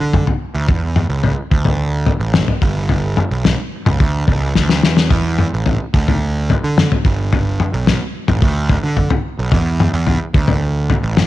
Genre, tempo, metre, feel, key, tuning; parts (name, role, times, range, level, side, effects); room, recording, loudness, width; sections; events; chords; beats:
psychedelic rock; 109 BPM; 4/4; straight; A4 = 440 Hz
fuzz picked electric bass; bass; 0.0-11.3 s; G1 to D3; -17 LUFS; right 2 dB; overdrive
cloth-damped thuddy drum kit; drums; 0.1-11.3 s; kick drum, snare drum, toms; -15 LUFS; left 1 dB
light reverb; 1960s-style stereo; -14 LUFS; side -15 dB against mid
0.0-11.3 A section
drum fill 4.6-5.1
0.14 | 0.69 1.24 1.79 2.35 | 2.90 3.45 4.00 4.56 | 5.11 5.66 6.21 6.76 | 7.32 7.87 8.42 8.97 | 9.52 10.07 10.62 11.18